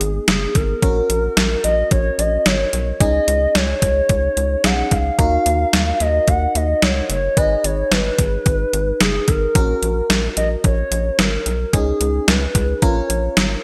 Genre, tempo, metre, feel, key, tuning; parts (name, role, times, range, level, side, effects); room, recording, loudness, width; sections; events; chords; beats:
synth-pop; 110 BPM; 4/4; straight; A4 = 435 Hz
hollow clarinet-like synth lead; melody; 0.0-13.6 s; Ab4 to Gb5; -22 LUFS; equal; chorus
FM electric piano; accompaniment; 0.0-13.6 s; Cb4 to Cb5; -29 LUFS; equal; chorus, phaser
rubbery square bass; bass; 0.0-13.6 s; Gb1 to Eb2; -24 LUFS; equal
detuned 8-bit digital drum machine; drums; 0.0-13.5 s; hi-hat, kick drum, snare drum; -20 LUFS; equal; overdrive, gated reverb
moderate lush hall reverb, RT60 1.6 s; bright 1980s-style digital production; -18 LUFS; mono
0.0-13.6 A section
0.0 Abm; 0.8 Gbadd9/Bb; 3.0 Dbsus2; 5.2 Ebm7; 7.4 Abm; 9.6 Gbadd9/Bb; 11.7 Dbsus2; 12.8 Bbm7
0.28 | 0.82 1.37 1.92 2.46 | 3.01 3.55 4.10 4.64 | 5.19 5.73 6.28 6.82 | 7.37 7.92 8.46 9.01 | 9.55 10.10 10.64 11.19 | 11.73 12.28 12.82 13.37